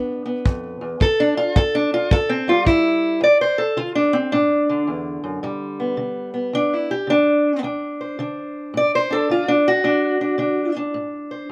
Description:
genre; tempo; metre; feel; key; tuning
acoustic country blues, solo or duo; 109 BPM; 4/4; swing 66% on 8ths; D mixolydian; A4 = 440 Hz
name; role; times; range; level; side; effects
fingerpicked steel-string acoustic guitar; melody; 0.0-11.5 s; D2 to D5; -20 LUFS; equal; none
kick drum; drums; 0.5-2.8 s; none; -20 LUFS; equal; none
room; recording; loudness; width
little or no reverb; recorded outdoors, with no room sound; -20 LUFS; mono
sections
0.0-3.2 A section; 3.2-11.5 A section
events
steel-string acoustic guitar solo 0.0-3.2, 3.2-11.5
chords
0.0 G7; 1.0 N.C.; 2.1 A5; 3.2 D5; 5.4 G; 7.6 D7

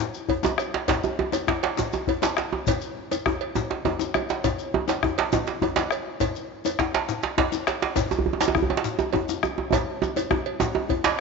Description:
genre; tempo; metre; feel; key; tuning
west african traditional, West African drum ensemble; 136 BPM (dotted quarters); 12/8; straight; none; none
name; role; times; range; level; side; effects
shekere; percussion; 0.1-11.2 s; none; -34 LUFS; left 6 dB; none
bombo; percussion; 0.3-11.0 s; none; -30 LUFS; left 6 dB; none
cowbell; percussion; 0.3-11.0 s; none; -33 LUFS; right 8 dB; none
djembe; percussion; 0.3-11.2 s; none; -29 LUFS; left 11 dB; none
djembe; percussion; 0.4-11.2 s; none; -25 LUFS; right 6 dB; none
room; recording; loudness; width
wet plate reverb, RT60 2.7 s; 1960s-style stereo with parts hard left and right, nothing above 7.7 kHz; -23 LUFS; side -4 dB against mid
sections
0.0-11.2 A section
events
drum fill 9.7-11.2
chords
none

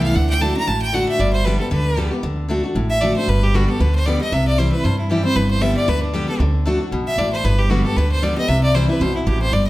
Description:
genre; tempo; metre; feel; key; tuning
bluegrass; 230 BPM; 4/4; swing 56% on 8ths; G major; A4 = 442 Hz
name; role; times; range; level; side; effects
bright fiddle; melody; 0.0-9.7 s; D4 to Bb5; -22 LUFS; equal; none
picked steel-string acoustic guitar; accompaniment; 0.0-9.7 s; E2 to G4; -20 LUFS; left 1 dB; none
upright bass; bass; 0.0-9.7 s; G1 to G2; -20 LUFS; equal; none
room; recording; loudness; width
wet large studio reverb, RT60 1.4 s; none; -16 LUFS; side -17 dB against mid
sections
0.0-2.2 A section; 2.2-9.7 B section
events
none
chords
0.2 D; 1.2 G; 2.2 D; 3.3 G; 4.3 C; 5.4 G; 6.4 D; 7.4 G; 8.5 C

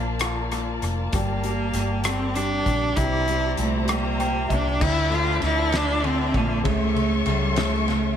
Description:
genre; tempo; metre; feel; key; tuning
six-eight pop ballad; 65 BPM (dotted quarters); 6/8; straight; unclear; A4 = 436 Hz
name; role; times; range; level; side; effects
warm concert grand piano; accompaniment; 0.0-8.2 s; Bb2 to G5; -29 LUFS; left 3 dB; dub echo
warm studio string section; sustained chords; 0.0-8.2 s; F3 to C#6; -30 LUFS; left 2 dB; none
vintage muted fingered electric bass; bass; 0.0-8.1 s; F1 to D2; -27 LUFS; equal; none
loose indie drum kit; drums; 0.2-8.0 s; crash cymbal, hi-hat, kick drum, ride cymbal, rim click, snare drum; -29 LUFS; equal; dub echo
clear cello; melody; 1.2-8.2 s; G3 to F4; -25 LUFS; right 1 dB; dub echo
room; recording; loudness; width
light reverb; echo-heavy mix; -20 LUFS; side -9 dB against mid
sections
0.0-4.8 A section; 4.8-8.2 B section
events
grand piano fill 3.9-4.8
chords
0.0 Bbmaj7; 1.1 Gmadd9; 3.0 C7; 4.8 Dmadd9; 6.7 A/C#

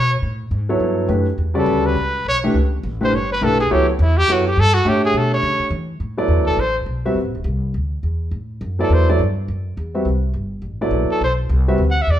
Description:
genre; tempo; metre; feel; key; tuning
modal jazz; 208 BPM; 4/4; swing 60% on 8ths; A mixolydian, D mixolydian from 6.0 s; A4 = 436 Hz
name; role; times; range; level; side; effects
breathy trumpet; melody; 0.0-6.8, 8.8-9.1, 11.1-12.2 s; B3 to F#5; -19 LUFS; equal; none
upright bass; bass; 0.0-12.2 s; D1 to E3; -20 LUFS; equal; none
warm concert grand piano; accompaniment; 0.7-11.8 s; C#3 to E5; -20 LUFS; equal; none
room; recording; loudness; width
moderate large studio reverb, RT60 1.0 s; band playing live in one room; -16 LUFS; side -11 dB against mid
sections
0.0-6.0 A section; 6.0-12.2 A section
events
trumpet solo 0.0-12.2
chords
0.0 A7; 6.0 D13

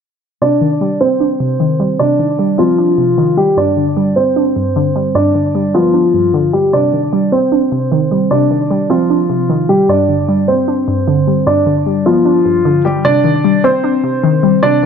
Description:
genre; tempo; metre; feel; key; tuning
hip hop; 152 BPM; 4/4; half-time; C harmonic minor; A4 = 439 Hz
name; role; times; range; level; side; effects
dark concert grand piano; melody; 0.4-14.9 s; F3 to D5; -13 LUFS; equal; digital delay
warbly dusty pluck; accompaniment; 0.4-14.9 s; G2 to D4; -14 LUFS; equal; chorus
room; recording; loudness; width
light reverb; dark, warm production, low-pass filter; -10 LUFS; side -7 dB against mid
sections
0.4-13.0 A section; 13.0-14.9 B section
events
filter sweep 0.4-13.0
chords
0.4 Cmadd9; 3.6 G; 6.7 Cmadd9; 9.9 G; 13.0 Cmadd9

